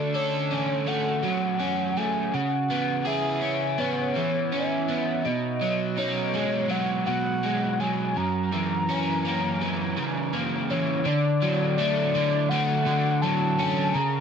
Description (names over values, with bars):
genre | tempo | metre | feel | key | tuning
rock | 82 BPM | 4/4 | straight | unclear | A4 = 439 Hz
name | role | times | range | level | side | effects
warbly nostalgic lead | melody | 0.0-14.2 s | C#5 to A#5 | -28 LUFS | left 2 dB | chorus, tape echo
crunchy overdriven guitar | riff | 0.0-14.2 s | F#2 to A4 | -24 LUFS | right 1 dB | analog chorus
room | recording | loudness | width
light reverb | dense, heavily limited modern master | -23 LUFS | side -7 dB against mid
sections
0.0-11.1 A section; 11.1-14.2 B section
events
none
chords
0.0 Dmaj7; 2.3 C#m7; 5.2 B6; 8.2 F#7; 11.1 Dmaj7